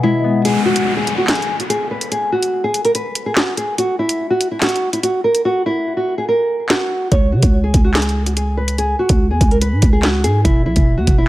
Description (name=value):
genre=hip hop, drill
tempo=144 BPM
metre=4/4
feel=half-time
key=unclear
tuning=A4 = 440 Hz
part: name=nylon-string guitar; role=melody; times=0.0-11.3 s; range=E4 to C#5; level=-18 LUFS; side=equal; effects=low-pass filter, digital delay
part: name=concert harp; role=accompaniment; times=0.0-3.3 s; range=B2 to B3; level=-21 LUFS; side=left 4 dB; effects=low-pass filter
part: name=drill drum kit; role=drums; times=0.5-11.2 s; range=handclaps, hi-hat, kick drum, snare drum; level=-16 LUFS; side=equal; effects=none
part: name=downlifter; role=sound effects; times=0.5-3.8 s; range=none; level=-25 LUFS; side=equal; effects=none
part: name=growling 808-style bass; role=bass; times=7.1-11.3 s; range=E1 to C#3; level=-16 LUFS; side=equal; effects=none
room=digital ambience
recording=none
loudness=-14 LUFS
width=side -16 dB against mid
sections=0.5-11.3 A section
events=break 0.0-0.5, 0.5-7.1; hi-hats muted 5.5-7.1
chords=0.5 N.C.; 7.1 C#5; 10.5 N.C.